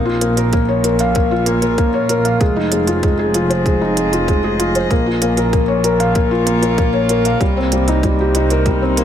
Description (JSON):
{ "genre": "piano and strings electronica", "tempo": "96 BPM", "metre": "4/4", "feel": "straight", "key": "Bb minor", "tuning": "A4 = 441 Hz", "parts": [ { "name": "warm string quartet", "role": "sustained chords", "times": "0.0-9.0 s", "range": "Bb2 to Eb5", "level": "-25 LUFS", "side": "equal", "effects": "sidechain pumping" }, { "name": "felt-muted upright piano", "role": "riff", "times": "0.0-9.0 s", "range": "G3 to F5", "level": "-16 LUFS", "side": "left 1 dB", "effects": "ping-pong delay" }, { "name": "bright studio double bass section", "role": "bass", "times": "0.0-9.0 s", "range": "F1 to C2", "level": "-20 LUFS", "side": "right 1 dB", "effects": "tube saturation, sidechain pumping" }, { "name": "electronic hi-hat", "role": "drums", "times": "0.2-9.0 s", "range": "none", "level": "-24 LUFS", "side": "right 5 dB", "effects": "none" }, { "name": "electronic kick drum", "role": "drums", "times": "0.5-8.8 s", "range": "none", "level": "-17 LUFS", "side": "right 1 dB", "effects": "none" } ], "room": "light reverb, small room ambience", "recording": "none", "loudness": "-13 LUFS", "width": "side -9 dB against mid", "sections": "0.0-9.0 A section", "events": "none", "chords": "0.0 Bbm; 2.4 Fm7; 4.9 Bbm; 7.4 Cm7" }